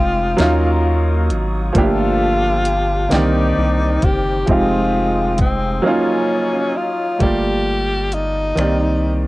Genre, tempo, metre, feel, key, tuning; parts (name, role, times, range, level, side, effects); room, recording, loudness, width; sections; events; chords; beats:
slow six-eight R&B; 44 BPM (dotted quarters); 6/8; straight; A4 = 441 Hz
breathy tenor saxophone; melody; 0.0-9.3 s; C4 to G4; -20 LUFS; left 2 dB; cassette tape
clear baby grand piano; accompaniment; 0.0-9.3 s; D3 to D5; -19 LUFS; right 2 dB; cassette tape
mellow tonewheel organ; sustained chords; 0.0-7.2 s; Gb3 to Eb6; -27 LUFS; left 2 dB; chorus vibrato, stopped rotary speaker, cassette tape
rubbery square bass; bass; 0.0-9.3 s; F1 to Eb2; -20 LUFS; equal
clear horn section; stabs; 0.4-6.7 s; Db3 to D5; -28 LUFS; left 4 dB; cassette tape, tape echo
smooth R&B drum kit; drums; 0.4-8.8 s; finger snaps, hi-hat, kick drum, snare drum; -19 LUFS; equal
little or no reverb; home recording on cassette; -14 LUFS; side -19 dB against mid
0.0-7.2 A section; 7.2-9.3 B section
silent gap 5.8-7.2
0.4 Ebm9; 1.8 Gm9; 3.1 Cm9; 4.5 Fm9; 5.8 Ebm9; 7.2 Gm9; 8.6 Cm9
0.39 | 1.75 3.11 | 4.48 5.84 | 7.20 8.57